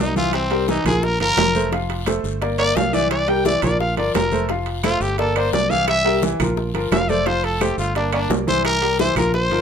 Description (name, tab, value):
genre	latin, salsa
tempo	173 BPM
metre	4/4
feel	straight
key	unclear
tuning	A4 = 440 Hz
part	growling trumpet	melody	0.0-9.6 s	C4 to G5	-20 LUFS	left 1 dB	none
part	clear baby grand piano	accompaniment	0.0-9.6 s	E3 to F5	-22 LUFS	equal	none
part	fingered electric bass	bass	0.0-9.6 s	F1 to C2	-25 LUFS	equal	none
part	congas	percussion	0.0-9.6 s	none	-28 LUFS	left 1 dB	none
part	bongos	percussion	0.2-9.6 s	none	-28 LUFS	left 6 dB	none
part	guiro	percussion	0.2-9.6 s	none	-36 LUFS	left 7 dB	none
part	timbales	percussion	0.3-9.6 s	none	-27 LUFS	right 7 dB	none
part	claves	percussion	4.8-9.3 s	none	-32 LUFS	right 5 dB	none
room	moderate studio reverb, RT60 0.6 s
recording	minimal, uncompressed stereo recording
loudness	-17 LUFS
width	side -7 dB against mid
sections	0.0-9.6 A section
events	trumpet solo 0.0-9.6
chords	0.3 C7; 1.0 Bb5; 1.7 F; 2.4 Gm; 3.1 C7; 3.8 Bb5; 4.5 F; 5.2 Gm; 5.9 C7; 6.6 Bb5; 7.3 F; 8.0 Gm; 8.6 C7